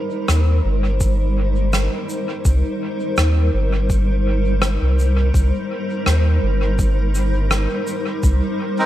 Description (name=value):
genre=ambient dub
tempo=83 BPM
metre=4/4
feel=swing 54% on 16ths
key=C minor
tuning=A4 = 444 Hz
part: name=granular cloud pad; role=sustained chords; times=0.0-8.9 s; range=G3 to C5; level=-23 LUFS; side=equal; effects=built-in reverb
part: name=soft dub sub bass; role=bass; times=0.3-8.4 s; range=G1 to Eb2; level=-17 LUFS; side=equal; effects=none
part: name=rim click and shaker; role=drums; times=0.3-8.4 s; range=none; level=-25 LUFS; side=equal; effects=dub echo
part: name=electronic kick drum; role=drums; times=1.0-8.4 s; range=none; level=-20 LUFS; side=equal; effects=overdrive
part: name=melodica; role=stabs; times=8.8-8.9 s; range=C4 to Bb4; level=-15 LUFS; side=right 2 dB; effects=none
room=small room reverb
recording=none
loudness=-16 LUFS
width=side -13 dB against mid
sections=0.0-8.9 A section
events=none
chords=0.0 Cm7